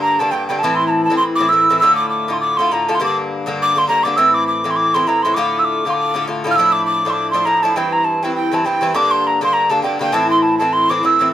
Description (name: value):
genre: celtic folk, Celtic reel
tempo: 202 BPM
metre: 4/4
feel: swing 56% on 8ths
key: D minor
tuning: A4 = 440 Hz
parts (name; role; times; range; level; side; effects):
- breathy mellow mid whistle; melody; 0.0-11.3 s; G5 to F6; -15 LUFS; right 1 dB; none
- Irish bouzouki; accompaniment; 0.0-11.3 s; G2 to F4; -19 LUFS; left 2 dB; none
room: light reverb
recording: minimal, uncompressed stereo recording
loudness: -14 LUFS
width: side -12 dB against mid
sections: 0.0-6.6 A section; 6.6-11.3 A section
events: none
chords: 0.0 Gm; 0.6 Am; 1.8 Dm; 3.0 Gm; 4.2 Am; 5.4 Dm; 6.6 Dmadd9; 7.7 C; 8.9 Gm; 10.1 Am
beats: 0.03 0.32 | 0.62 0.92 1.21 1.51 | 1.81 2.10 2.40 2.70 | 2.99 3.29 3.59 3.88 | 4.18 4.48 4.78 5.07 | 5.37 5.67 5.97 6.26 | 6.56 6.86 7.15 7.45 | 7.75 8.04 8.34 8.64 | 8.94 9.23 9.53 9.83 | 10.12 10.42 10.72 11.01 | 11.31